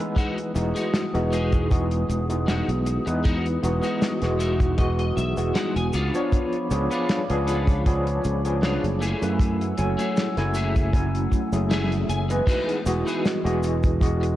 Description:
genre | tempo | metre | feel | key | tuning
vaporwave | 78 BPM | 4/4 | swing 53% on 16ths | E major | A4 = 441 Hz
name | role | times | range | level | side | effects
overdriven tine electric piano | accompaniment | 0.0-14.4 s | E3 to G#5 | -26 LUFS | equal | fast tremolo, lush chorus, analog delay
warbly tape-like pad | sustained chords | 0.0-12.4 s | A3 to E6 | -35 LUFS | equal | chorus, built-in reverb
electric guitar at the edge of break-up | riff | 0.0-14.3 s | G#3 to G#5 | -31 LUFS | left 1 dB | ensemble chorus, analog delay
damped 70s drum kit | drums | 0.2-14.4 s | cabasa, crash cymbal, hi-hat, snare drum | -30 LUFS | equal | gated reverb
kick drum | drums | 0.2-14.2 s | none | -21 LUFS | equal | none
sustaining fretless electric bass | bass | 0.6-14.3 s | E1 to F#2 | -25 LUFS | equal | none
room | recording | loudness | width
light reverb, studio reverb | cassette tape | -21 LUFS | side -14 dB against mid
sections
0.0-12.5 A section; 12.5-14.4 B section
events
clean electric guitar fill 4.0-6.3, 11.3-12.5; band accent 11.7-12.1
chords
0.2 Emaj9; 5.9 C#7b9; 9.0 F#m9; 12.5 Emaj9

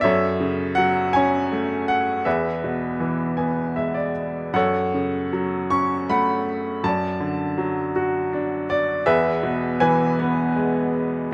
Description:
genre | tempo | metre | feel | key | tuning
classical, lyrical solo piano | 80 BPM | 3/4 | rubato | unclear | A4 = 440 Hz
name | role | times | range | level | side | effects
bright upright piano | solo | 0.0-11.3 s | E2 to C#6 | -22 LUFS | equal | none
room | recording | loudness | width
light reverb | none | -22 LUFS | mono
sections
0.0-11.3 A section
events
upright piano fill 3.0-4.5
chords
0.0 F#m; 2.3 E; 4.5 F#m; 6.8 D/F#; 9.1 E

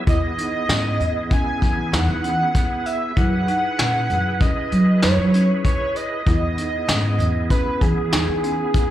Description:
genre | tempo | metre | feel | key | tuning
progressive instrumental, band music in an uneven meter | 97 BPM | 5/4 | straight | unclear | A4 = 440 Hz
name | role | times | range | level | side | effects
bright tonewheel organ | accompaniment | 0.0-8.9 s | B3 to B4 | -29 LUFS | equal | chorus vibrato, fast rotary speaker, slapback echo
pulse-width lead | melody | 0.1-8.9 s | G#4 to G#5 | -24 LUFS | right 2 dB | chorus, slapback echo
folk marimba with medium hard mallets | arpeggios | 0.1-8.8 s | C#4 to E4 | -30 LUFS | left 1 dB | slapback echo, tape echo
upright bass | bass | 0.1-8.6 s | E2 to F#3 | -21 LUFS | equal | none
vintage brush drum kit | drums | 0.1-8.9 s | hi-hat, kick drum, snare drum | -21 LUFS | left 1 dB | none
room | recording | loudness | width
small room ambience | live gig heard through the venue's PA, club reverb | -17 LUFS | side -12 dB against mid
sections
0.0-8.9 A section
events
none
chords
0.1 Emaj7; 3.2 F#sus4; 6.3 Emaj7

